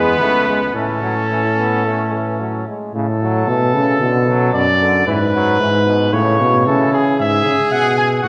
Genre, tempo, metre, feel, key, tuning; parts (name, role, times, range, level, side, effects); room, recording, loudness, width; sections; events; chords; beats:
classical, imitative canzona for brass ensemble; 113 BPM; 4/4; straight; A major; A4 = 441 Hz
warm trumpet; melody; 0.0-8.3 s; G#4 to G#5; -20 LUFS; equal
clear trumpet; second line; 0.0-2.6, 7.2-8.3 s; B3 to G#4; -23 LUFS; equal
brilliant trombone; accompaniment; 0.0-7.2 s; B2 to B3; -25 LUFS; equal
warm bass trombone; bass; 0.0-8.3 s; C#2 to C#3; -20 LUFS; equal
wet recital hall reverb, RT60 1.6 s; recorded in a church or concert hall; -16 LUFS; mono
0.0-2.9 A section; 2.9-8.3 B section
0.0 E; 0.7 A; 4.0 Bm; 5.1 E/G#; 6.1 A; 7.2 E/G#
0.20 | 0.75 1.30 1.85 2.40 | 2.95 3.49 4.02 4.54 | 5.07 5.61 6.13 6.66 | 7.19 7.71 8.23